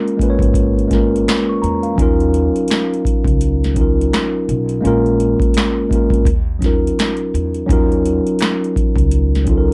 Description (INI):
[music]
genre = lo-fi hip hop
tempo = 84 BPM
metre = 4/4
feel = swing 59% on 16ths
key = Eb minor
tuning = A4 = 439 Hz
[part]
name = mellow tine electric piano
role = accompaniment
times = 0.0-9.7 s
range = Gb3 to Db6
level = -19 LUFS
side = equal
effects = cassette tape, low-pass filter
[part]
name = booming analog drum machine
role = drums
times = 0.1-9.7 s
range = handclaps, hi-hat, kick drum, snare drum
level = -20 LUFS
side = equal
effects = overdrive
[part]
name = upright bass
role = bass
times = 0.4-9.7 s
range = Ab1 to Fb2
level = -21 LUFS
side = equal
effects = none
[part]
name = finger snaps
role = percussion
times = 8.4-8.6 s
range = none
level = -35 LUFS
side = equal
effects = none
[sound]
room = moderate studio reverb, RT60 0.5 s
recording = dark, warm production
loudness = -16 LUFS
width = mono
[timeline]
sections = 0.0-7.7 A section; 7.7-9.7 A section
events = none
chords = 0.0 Bbm7; 2.0 Ebm9; 4.8 Bbm7; 6.3 Ebm9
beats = 0.54 1.26 | 1.97 2.69 3.40 4.12 | 4.83 5.54 6.26 6.97 | 7.69 8.40 9.12